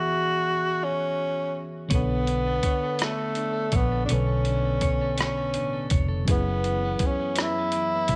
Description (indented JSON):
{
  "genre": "slow six-eight R&B",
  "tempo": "55 BPM (dotted quarters)",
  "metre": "6/8",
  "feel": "straight",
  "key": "B dorian",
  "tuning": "A4 = 440 Hz",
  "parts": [
    { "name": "breathy tenor saxophone", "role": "melody", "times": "0.0-8.2 s", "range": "A3 to F#4", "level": "-29 LUFS", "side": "equal", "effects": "none" },
    { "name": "tine electric piano", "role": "accompaniment", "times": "0.0-8.2 s", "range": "B2 to E5", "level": "-33 LUFS", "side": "equal", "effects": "none" },
    { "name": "clean electric guitar", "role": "second line", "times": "1.9-8.2 s", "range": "F#2 to C#5", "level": "-37 LUFS", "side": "equal", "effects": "none" },
    { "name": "vintage muted fingered electric bass", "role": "bass", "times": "1.9-8.2 s", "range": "E#1 to B1", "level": "-30 LUFS", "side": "equal", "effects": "none" },
    { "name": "dusty soul sampler-style drum kit", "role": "drums", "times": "1.9-8.2 s", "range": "hi-hat, kick drum, rim click", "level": "-29 LUFS", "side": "equal", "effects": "none" }
  ],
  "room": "light reverb, digital ambience",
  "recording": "none",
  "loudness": "-25 LUFS",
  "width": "mono",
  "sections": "0.0-8.2 A section",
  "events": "none",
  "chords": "0.0 E9; 1.9 Bm9; 6.3 F#7sus4",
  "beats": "0.83 | 1.92 3.01 | 4.10 5.19 | 6.28 7.37"
}